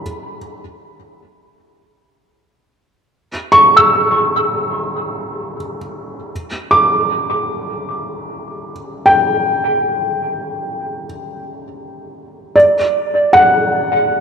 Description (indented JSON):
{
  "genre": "ambient",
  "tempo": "free time",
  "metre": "none",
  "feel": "none",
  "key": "unclear",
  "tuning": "A4 = 440 Hz",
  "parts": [
    { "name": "felt-muted upright piano", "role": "solo", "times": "0.0-14.2 s", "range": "D5 to E6", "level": "-13 LUFS", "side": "equal", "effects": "analog delay" }
  ],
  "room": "wet plate reverb, RT60 3.0 s",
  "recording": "echo-heavy mix",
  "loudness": "-12 LUFS",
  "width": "side -7 dB against mid",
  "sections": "0.0-6.3 A section; 6.3-14.2 B section",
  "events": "none",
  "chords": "0.0 N.C.; 3.1 C#m; 6.3 G5; 12.6 D"
}